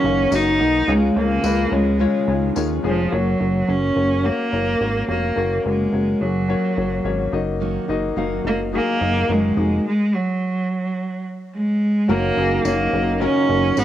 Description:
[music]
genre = piano-driven pop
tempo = 107 BPM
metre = 4/4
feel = straight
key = F# major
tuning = A4 = 440 Hz
[part]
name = rich cello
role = melody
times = 0.0-13.8 s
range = E#3 to D#4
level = -20 LUFS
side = right 1 dB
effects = cassette tape
[part]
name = warm grand piano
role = accompaniment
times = 0.0-13.8 s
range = C#3 to E#5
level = -24 LUFS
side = left 7 dB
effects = cassette tape
[part]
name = fingerpicked steel-string acoustic guitar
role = riff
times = 0.0-3.1, 7.6-13.8 s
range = F#2 to G#4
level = -27 LUFS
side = right 9 dB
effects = cassette tape
[part]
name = chorused synth bass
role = bass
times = 0.0-13.8 s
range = E#1 to D#2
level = -24 LUFS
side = equal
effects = none
[part]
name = mellow French horn section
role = second line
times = 0.3-2.8, 12.1-13.8 s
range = D#3 to F#4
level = -30 LUFS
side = left 7 dB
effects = none
[part]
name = tambourine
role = percussion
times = 0.3-2.7, 12.6-13.8 s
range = none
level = -35 LUFS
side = left 9 dB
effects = none
[sound]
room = light reverb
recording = home recording on cassette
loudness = -17 LUFS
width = side -12 dB against mid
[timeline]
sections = 0.0-3.1 A section; 3.1-12.1 B section; 12.1-13.8 A section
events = none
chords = 0.0 D#m/F#; 0.9 C#; 3.1 F#; 7.3 D#m; 12.1 F#

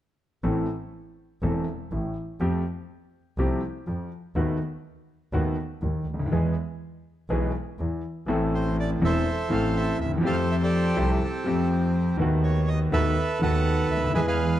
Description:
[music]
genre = tango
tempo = 123 BPM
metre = 4/4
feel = rubato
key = A minor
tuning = A4 = 439 Hz
[part]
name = warm concert grand piano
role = accompaniment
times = 0.4-14.6 s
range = E1 to A4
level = -26 LUFS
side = equal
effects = none
[part]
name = clear double bass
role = bass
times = 0.4-14.6 s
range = E1 to F2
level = -27 LUFS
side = equal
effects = none
[part]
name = bandoneon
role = melody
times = 8.5-14.6 s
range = C4 to F#5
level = -28 LUFS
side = right 2 dB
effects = none
[sound]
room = light reverb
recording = dark, warm production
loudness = -23 LUFS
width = side -12 dB against mid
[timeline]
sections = 0.4-8.3 A section; 8.3-14.6 B section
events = none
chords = 0.4 Am; 2.4 Fadd9; 4.4 B7/D#; 6.3 E; 8.3 Am; 10.2 Fadd9; 12.2 B7/D#

